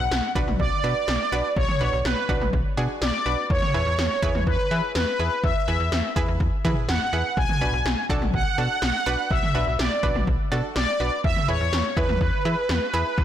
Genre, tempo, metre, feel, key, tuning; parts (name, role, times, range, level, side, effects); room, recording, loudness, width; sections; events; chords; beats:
synth-pop; 124 BPM; 4/4; straight; A4 = 442 Hz
analog synth brass; melody; 0.0-13.2 s; B4 to G#5; -25 LUFS; equal; chorus, tape echo
analog pluck; accompaniment; 0.0-13.1 s; D4 to B4; -31 LUFS; right 2 dB; chorus
slap-like FM bass; bass; 0.0-13.2 s; B1 to E3; -26 LUFS; equal
80s electronic pad drums; drums; 0.1-13.2 s; kick drum, snare drum, toms; -26 LUFS; equal; gated reverb on snare and toms
riser; sound effects; 13.2 s; barely audible
moderate lush hall reverb, RT60 1.6 s; blown-out, overdriven recording, overdrive; -21 LUFS; side -10 dB against mid
0.0-13.2 A section
0.0 Bm; 3.5 E; 7.4 Bm; 11.2 E
0.11 0.60 1.08 | 1.56 2.05 2.53 3.02 | 3.50 3.98 4.47 4.95 | 5.44 5.92 6.40 6.89 | 7.37 7.86 8.34 8.82 | 9.31 9.79 10.28 10.76 | 11.24 11.73 12.21 12.69 | 13.18